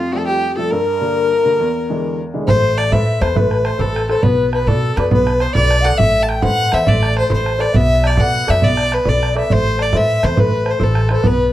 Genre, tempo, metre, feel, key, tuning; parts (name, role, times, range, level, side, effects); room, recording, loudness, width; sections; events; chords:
celtic folk, Celtic slide; 137 BPM (dotted quarters); 12/8; straight; A dorian; A4 = 438 Hz
warm fiddle; melody; 0.0-11.5 s; F4 to A5; -18 LUFS; equal; plate reverb
mellow hollow wooden flute; second line; 0.0-11.5 s; F4 to A5; -22 LUFS; left 5 dB
clear upright piano; accompaniment; 0.0-11.5 s; E2 to D5; -22 LUFS; equal
upright bass; bass; 2.5-11.5 s; A1 to B2; -18 LUFS; equal
bodhran; percussion; 2.5-11.4 s; -19 LUFS; right 2 dB
light reverb; -13 LUFS; side -13 dB against mid
0.0-2.5 A section; 2.5-11.5 B section
0.0 Fadd9; 0.7 Gm; 1.6 E7; 2.5 Amadd9; 4.2 Bm7; 6.0 Amadd9; 7.7 Bm7; 9.5 Amadd9